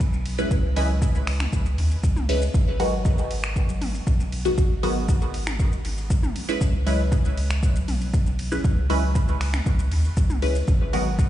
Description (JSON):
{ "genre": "dub techno", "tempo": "118 BPM", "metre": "4/4", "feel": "straight", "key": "unclear", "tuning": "A4 = 440 Hz", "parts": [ { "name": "warm sub bass", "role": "bass", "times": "0.0-11.3 s", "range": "G#1 to D#2", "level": "-25 LUFS", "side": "equal", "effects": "sidechain pumping" }, { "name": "deep house drum kit", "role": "drums", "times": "0.0-11.3 s", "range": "finger snaps, hi-hat, ride cymbal, shaker", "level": "-35 LUFS", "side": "equal", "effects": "studio reverb, dub echo" }, { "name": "electronic kick drum", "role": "drums", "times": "0.0-11.3 s", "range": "none", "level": "-22 LUFS", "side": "equal", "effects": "studio reverb" }, { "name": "filtered dub chord stab", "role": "stabs", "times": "0.4-11.1 s", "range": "D#3 to B4", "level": "-28 LUFS", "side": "equal", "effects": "phaser, sidechain pumping, dub echo" }, { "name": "filtered dub chord stab", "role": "riff", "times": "0.8-11.1 s", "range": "A#4 to B5", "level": "-36 LUFS", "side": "right 4 dB", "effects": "phaser, wide subtle chorus, sidechain pumping, dub echo" }, { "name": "electronic congas and toms", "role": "percussion", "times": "0.8-11.0 s", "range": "none", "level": "-35 LUFS", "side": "left 3 dB", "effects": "overdrive, sidechain pumping on perc, studio reverb, sidechain pumping on toms, dub echo" } ], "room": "digital ambience", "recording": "played on a big sound system in a bare room, stone room reverb, nothing above 10.7 kHz", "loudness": "-20 LUFS", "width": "side -13 dB against mid", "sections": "0.0-11.3 A section", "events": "none", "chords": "0.0 C#m7; 2.5 G#m7; 6.6 C#m7; 10.7 G#m7" }